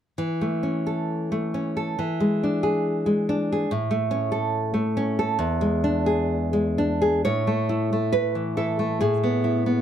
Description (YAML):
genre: romantic piece for solo classical guitar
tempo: 60-72 BPM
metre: 2/4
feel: rubato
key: A major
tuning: A4 = 440 Hz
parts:
  - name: nylon-string guitar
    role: solo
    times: 0.2-9.8 s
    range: E2 to C#5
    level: -21 LUFS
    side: equal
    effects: none
room: light reverb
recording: none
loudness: -22 LUFS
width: side -9 dB against mid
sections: 0.2-7.3 A section; 7.3-9.8 B section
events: none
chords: 0.2 A/E; 2.0 E7; 3.7 A; 5.4 E7; 7.3 A; 9.0 E/A